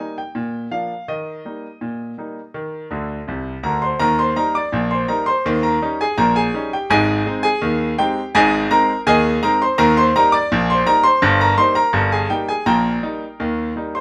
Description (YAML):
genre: ragtime piano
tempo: 83 BPM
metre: 2/4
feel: straight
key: Eb major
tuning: A4 = 441 Hz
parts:
  - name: clear grand piano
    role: solo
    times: 0.0-14.0 s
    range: G1 to D6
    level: -18 LUFS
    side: equal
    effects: none
room: light reverb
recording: band playing live in one room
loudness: -18 LUFS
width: mono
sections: 0.0-4.0 A section; 4.0-14.0 B section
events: grand piano fill 2.9-4.0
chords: 0.4 Bb; 1.1 Eb; 5.5 Eb7; 6.9 Ab; 9.8 Eb; 11.2 Eb/G; 12.7 Eb/Bb